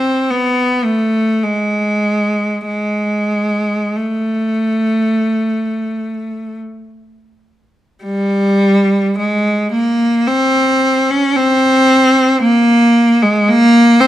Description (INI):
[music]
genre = classical, free, expressive piece for unaccompanied cello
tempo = 35-59 BPM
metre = 4/4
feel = rubato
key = unclear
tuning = A4 = 444 Hz
[part]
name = clear cello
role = solo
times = 0.0-14.1 s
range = G3 to Db4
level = -12 LUFS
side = equal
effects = none
[sound]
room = light reverb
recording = close, detailed microphones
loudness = -12 LUFS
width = side -13 dB against mid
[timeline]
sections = 0.0-8.0 A section; 8.0-14.1 B section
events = none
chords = none